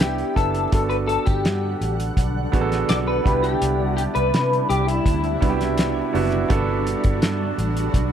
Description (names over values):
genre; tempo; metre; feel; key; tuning
indie pop, bedroom pop; 83 BPM; 4/4; straight; G major; A4 = 441 Hz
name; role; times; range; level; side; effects
clear upright piano; accompaniment; 0.0-8.1 s; B3 to A4; -25 LUFS; right 7 dB; none
electric guitar through a small old amp; accompaniment; 0.0-5.6 s; E4 to D5; -23 LUFS; left 4 dB; analog chorus, vibrato effect
vintage muted fingered electric bass; bass; 0.0-8.1 s; F#1 to C3; -25 LUFS; equal; none
cloth-damped thuddy drum kit; drums; 0.0-8.1 s; hi-hat, kick drum, snare drum; -22 LUFS; equal; none
shimmering ambient pad; sustained chords; 1.4-8.1 s; C3 to F#5; -28 LUFS; equal; chorus, built-in reverb
room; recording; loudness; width
light reverb, small room ambience; none; -18 LUFS; side -9 dB against mid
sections
0.0-8.1 A section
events
clean electric guitar solo 0.0-8.1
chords
0.0 Cmaj7; 0.7 Gmaj7; 3.3 Cmaj7; 6.5 Gmaj7